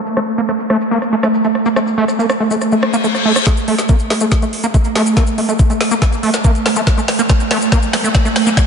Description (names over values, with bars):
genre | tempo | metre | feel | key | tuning
psychedelic trance | 141 BPM | 4/4 | straight | unclear | A4 = 440 Hz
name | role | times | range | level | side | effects
swarming drone | sustained chords | 0.0-8.7 s | A3 | -18 LUFS | right 2 dB | built-in reverb, vintage 12-bit sampler grit, sidechain pumping
downlifter, reverse cymbal and riser | sound effects | 0.0-0.1, 2.8-8.7 s | none | -26 LUFS | left 6 dB | none
maracas | percussion | 0.1-8.7 s | none | -29 LUFS | left 4 dB | none
overdriven acid bass | riff | 0.2-8.6 s | A3 to Bb3 | -18 LUFS | equal | distortion, auto-pan, vintage 12-bit sampler grit, sidechain pumping, diffuse ambient delay
garage drum kit | drums | 0.2-8.7 s | hi-hat, rim click, snare drum | -20 LUFS | equal | overdrive, high-pass filter on snare, high-pass filter on hats, high-pass filter on cymbals
electronic kick drum | drums | 3.5-8.7 s | none | -13 LUFS | left 1 dB | overdrive
room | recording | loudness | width
wet cathedral reverb, RT60 4.8 s | dreamy mix soaked in reverb, low-pass filter, nothing above 10.9 kHz | -12 LUFS | side -6 dB against mid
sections
0.0-3.5 A section; 3.5-8.7 B section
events
filter sweep on synth drone 0.0-3.5, 3.5-8.7; filter sweep 0.0-3.5; reverse cymbal 2.8-3.5; build-up 3.5-8.7; drum fill 3.5-8.7; filter sweep on acid bass 3.5-8.7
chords
none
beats
| 0.06 0.49 0.91 1.34 | 1.76 2.19 2.61 3.04 | 3.46 3.89 4.32 4.74 | 5.17 5.59 6.02 6.44 | 6.87 7.29 7.72 8.15 | 8.57